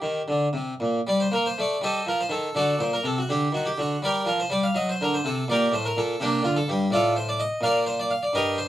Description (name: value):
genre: classical, baroque-style suite movement for harpsichord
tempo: 82 BPM (dotted quarters)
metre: 6/8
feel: uneven beats, rubato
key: G minor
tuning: A4 = 439 Hz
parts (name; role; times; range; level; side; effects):
- harpsichord; solo; 0.0-8.7 s; G2 to F5; -22 LUFS; equal; none
room: light reverb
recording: minimal, uncompressed stereo recording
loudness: -22 LUFS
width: side -13 dB against mid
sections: 0.0-1.1 A section; 1.1-8.7 B section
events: none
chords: 0.0 Gm; 1.8 Am7b5; 2.6 D7; 4.0 Gm; 4.8 Cm9b5; 5.5 Gm; 6.9 F/A; 7.6 Bb